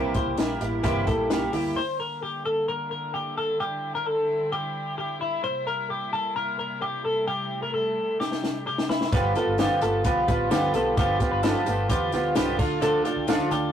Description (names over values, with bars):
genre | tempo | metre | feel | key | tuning
jangly indie pop | 130 BPM | 4/4 | straight | unclear | A4 = 445 Hz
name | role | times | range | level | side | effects
fingerpicked twelve-string acoustic guitar | accompaniment | 0.0-1.8, 9.1-13.7 s | G2 to A4 | -24 LUFS | right 2 dB | none
twelve-string electric guitar | arpeggios | 0.0-13.7 s | E4 to C5 | -27 LUFS | left 2 dB | none
vintage muted fingered electric bass | bass | 0.0-1.7, 9.1-13.7 s | G1 to E2 | -32 LUFS | equal | none
compact cocktail drum kit | drums | 0.1-1.6, 8.2-13.6 s | crash cymbal, hi-hat, kick drum, snare drum | -26 LUFS | left 1 dB | none
warm studio string section | sustained chords | 1.8-13.7 s | C3 to F4 | -36 LUFS | left 1 dB | none
tambourine | percussion | 9.1-13.6 s | none | -48 LUFS | left 4 dB | none
room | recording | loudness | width
moderate booth ambience, RT60 0.2 s | rough rehearsal-room recording, warm saturation | -23 LUFS | side -9 dB against mid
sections
0.0-1.8 A section; 1.8-13.7 B section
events
drum fill 8.2-9.1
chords
0.0 C7; 1.8 Em7b5; 5.4 C7; 9.1 G7; 12.6 Dm